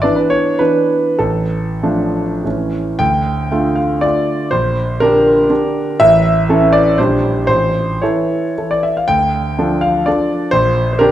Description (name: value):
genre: classical, romantic triple-time dance for piano with dotted rhythms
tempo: 91-134 BPM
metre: 3/4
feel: rubato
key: D minor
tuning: A4 = 441 Hz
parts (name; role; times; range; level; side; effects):
- warm concert grand piano; solo; 0.0-11.1 s; A1 to G5; -12 LUFS; equal; none
room: wet recital hall reverb, RT60 1.8 s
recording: none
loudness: -12 LUFS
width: side -12 dB against mid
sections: 0.0-3.0 A section; 3.0-11.1 B section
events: none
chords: 0.0 E7(no3); 1.2 Dm/A; 2.5 A; 3.0 Dm; 4.5 Gm/Bb; 6.0 A; 7.0 Gm/Bb; 7.5 A; 9.1 Dm; 10.5 Gm/Bb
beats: 0.02 0.60 | 1.19 1.82 2.45 | 3.01 3.52 4.03 | 4.52 5.01 5.50 | 6.00 6.48 6.98 | 7.48 8.01 8.56 | 9.08 9.58 10.07 | 10.53 11.00